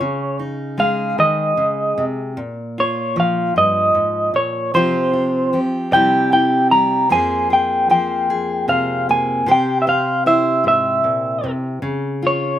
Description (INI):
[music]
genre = acoustic folk-pop ballad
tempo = 51 BPM (dotted quarters)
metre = 6/8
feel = straight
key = unclear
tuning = A4 = 440 Hz
[part]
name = electric guitar through a small old amp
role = melody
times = 0.0-12.6 s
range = C5 to Bb5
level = -16 LUFS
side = equal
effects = tremolo
[part]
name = fingerpicked steel-string acoustic guitar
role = accompaniment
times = 0.0-12.6 s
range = F2 to C5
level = -21 LUFS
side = equal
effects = slapback echo
[sound]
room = light reverb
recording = recorded outdoors, with no room sound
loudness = -15 LUFS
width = side -11 dB against mid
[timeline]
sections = 0.0-12.6 A section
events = none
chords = 0.0 Dbsus2; 2.4 Bb5; 4.7 Csus4; 5.9 C; 7.1 Fmadd9; 9.5 C; 11.8 Bbm/Db (rootless)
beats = | 0.01 1.19 | 2.38 3.56 | 4.74 5.93 | 7.11 8.29 | 9.47 10.65 | 11.83